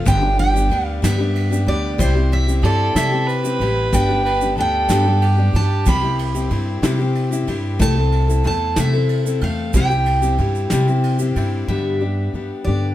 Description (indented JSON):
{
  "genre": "acoustic folk duo or small band",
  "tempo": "62 BPM (dotted quarters)",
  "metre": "6/8",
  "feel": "straight",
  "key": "G major",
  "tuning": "A4 = 440 Hz",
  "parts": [
    { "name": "picked steel-string acoustic guitar", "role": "melody", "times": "0.0-12.9 s", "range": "C5 to B5", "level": "-23 LUFS", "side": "right 2 dB", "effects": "none" },
    { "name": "picked steel-string acoustic guitar", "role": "accompaniment", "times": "0.0-12.9 s", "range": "G2 to A4", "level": "-22 LUFS", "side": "left 5 dB", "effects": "none" },
    { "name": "upright bass", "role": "bass", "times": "0.0-12.9 s", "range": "G1 to C3", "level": "-19 LUFS", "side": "right 1 dB", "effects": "none" },
    { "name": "soft brush drum kit", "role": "drums", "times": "0.1-11.5 s", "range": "kick drum, ride cymbal, snare drum", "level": "-26 LUFS", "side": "right 1 dB", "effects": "none" },
    { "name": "tube shaker", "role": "percussion", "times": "0.1-11.3 s", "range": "none", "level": "-33 LUFS", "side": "right 10 dB", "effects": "none" },
    { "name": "warm fiddle", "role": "second line", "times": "2.6-6.5 s", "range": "G4 to B4", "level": "-24 LUFS", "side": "right 2 dB", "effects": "none" }
  ],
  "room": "light reverb",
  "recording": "none",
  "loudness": "-16 LUFS",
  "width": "side -13 dB against mid",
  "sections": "0.0-11.7 A section; 11.7-12.9 B section",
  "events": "none",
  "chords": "0.1 G; 2.0 C; 3.9 G; 5.9 C; 7.8 Am/C; 9.7 C; 11.7 G",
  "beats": "| 0.05 1.02 | 1.99 2.96 | 3.93 4.90 | 5.87 6.84 | 7.80 8.78 | 9.74 10.71 | 11.69 12.66"
}